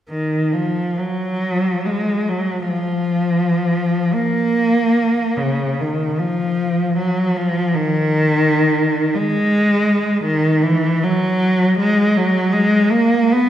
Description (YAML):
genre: classical, free, expressive piece for unaccompanied cello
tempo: 39-55 BPM (dotted quarters)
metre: 6/8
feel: rubato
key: Eb minor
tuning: A4 = 441 Hz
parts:
  - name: rich cello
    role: solo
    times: 0.1-13.5 s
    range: Db3 to B3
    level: -15 LUFS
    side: equal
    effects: none
room: wet concert hall reverb, RT60 1.9 s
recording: recorded in a church or concert hall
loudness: -15 LUFS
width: side -11 dB against mid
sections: 0.1-13.5 A section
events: none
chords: none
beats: | 0.10 1.44 | 2.72 4.14 | 5.39 6.57 | 7.77 9.13 | 10.25 11.42 | 12.56